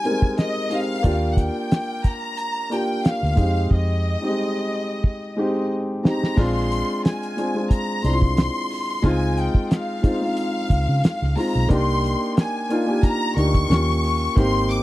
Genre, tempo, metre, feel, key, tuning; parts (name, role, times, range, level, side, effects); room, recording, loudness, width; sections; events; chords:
lush 1970s-style soul; 90 BPM; 4/4; swing 54% on 16ths; Eb major; A4 = 440 Hz
rich studio violin section; melody; 0.0-14.8 s; Eb5 to D6; -27 LUFS; left 1 dB; slapback echo
dark concert grand piano; accompaniment; 0.0-14.8 s; G3 to Bb4; -24 LUFS; equal
cloth-damped thuddy drum kit; drums; 0.1-14.8 s; crash cymbal, hi-hat, kick drum, snare drum; -18 LUFS; equal
vintage muted fingered electric bass; bass; 1.0-14.8 s; Ab1 to Db3; -22 LUFS; equal
small room reverb; dry, close 1970s-style studio recording; -19 LUFS; side -16 dB against mid
0.0-6.4 A section; 6.4-14.8 B section
drum fill 3.7-6.4
0.0 Fm7; 1.0 Ebmaj7; 3.4 Fm7; 6.4 Bb9; 9.0 Dbmaj7; 11.7 Cm9; 13.7 Eb9